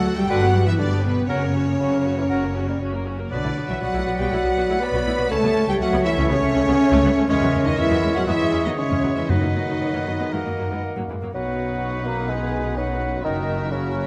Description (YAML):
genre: classical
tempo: 115-127 BPM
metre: 4/4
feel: straight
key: B major from 7.3 s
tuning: A4 = 440 Hz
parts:
  - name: warm symphonic violin section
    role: melody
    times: 0.0-14.1 s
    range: B4 to B5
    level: -37 LUFS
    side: equal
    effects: none
  - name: warm clarinet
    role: second line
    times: 0.0-14.1 s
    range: D#4 to D5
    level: -35 LUFS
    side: equal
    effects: none
  - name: warm symphonic violin section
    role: second line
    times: 0.0-14.1 s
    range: A#4 to B5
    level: -36 LUFS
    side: equal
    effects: none
  - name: rich symphonic viola section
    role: accompaniment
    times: 0.0-14.1 s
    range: D#3 to A#4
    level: -32 LUFS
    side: equal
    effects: none
  - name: warm French horn section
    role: sustained chords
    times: 0.0-14.1 s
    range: B3 to B4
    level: -26 LUFS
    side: equal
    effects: none
  - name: rich symphonic double bass section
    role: bass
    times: 0.0-14.1 s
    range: F#1 to F#2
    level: -29 LUFS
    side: equal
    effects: none
  - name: warm symphonic cello section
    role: bass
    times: 0.0-14.1 s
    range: F#2 to B3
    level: -30 LUFS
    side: equal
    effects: none
  - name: clear oboe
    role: second line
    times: 0.3-14.1 s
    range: A#4 to C#5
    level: -34 LUFS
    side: equal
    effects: none
  - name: mellow hollow silver concert flute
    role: second line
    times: 0.3-14.1 s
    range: C#5 to A#5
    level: -35 LUFS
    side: equal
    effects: none
  - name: warm bassoon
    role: accompaniment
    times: 0.3-14.1 s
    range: C#3 to B3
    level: -33 LUFS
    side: equal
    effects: none
  - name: timpani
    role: percussion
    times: 9.3-10.0 s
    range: F#2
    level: -26 LUFS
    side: equal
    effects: none
  - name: bright trombone section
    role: sustained chords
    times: 11.3-14.1 s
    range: F#2 to B3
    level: -38 LUFS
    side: equal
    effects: none
  - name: dark trumpet section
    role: stabs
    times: 11.3-14.1 s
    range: C#4 to A#4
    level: -36 LUFS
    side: equal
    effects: none
  - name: mellow tuba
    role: bass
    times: 11.3-14.1 s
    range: F#1 to B1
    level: -34 LUFS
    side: equal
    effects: none
room: wet concert hall reverb, RT60 1.9 s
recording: none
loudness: -21 LUFS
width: mono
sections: 0.0-11.3 A section; 11.3-14.1 B section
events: none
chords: 0.3 G; 1.3 F#; 3.3 Bm; 5.3 A/C#; 7.3 C#m/E; 9.3 B/F#; 11.3 B; 13.2 F#7